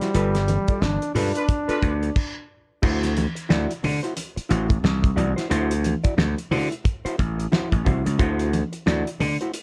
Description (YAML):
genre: funk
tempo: 90 BPM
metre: 4/4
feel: swing 60% on 16ths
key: D mixolydian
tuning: A4 = 440 Hz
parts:
  - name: bright trombone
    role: melody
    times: 0.0-2.5 s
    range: G3 to D4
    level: -28 LUFS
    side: equal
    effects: none
  - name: hollow-body jazz guitar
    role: accompaniment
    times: 0.0-9.6 s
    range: E4 to D5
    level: -31 LUFS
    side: equal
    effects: plate reverb
  - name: cloth-damped thuddy drum kit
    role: drums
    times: 0.0-9.6 s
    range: crash cymbal, hi-hat, kick drum, snare drum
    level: -27 LUFS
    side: equal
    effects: none
  - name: gritty slap bass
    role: bass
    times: 0.1-9.4 s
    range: G1 to D3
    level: -25 LUFS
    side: equal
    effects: overdrive
  - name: congas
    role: percussion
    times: 0.2-9.4 s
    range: none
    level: -33 LUFS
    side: equal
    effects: none
  - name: clear horn section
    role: second line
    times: 1.4-1.9 s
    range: F3 to B4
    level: -32 LUFS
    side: equal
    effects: none
room: light reverb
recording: dark, warm production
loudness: -23 LUFS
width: mono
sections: 0.0-2.8 A section; 2.8-9.6 B section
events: band accent 0.1-2.8; stop 2.2-2.8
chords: 0.1 G9; 2.8 D9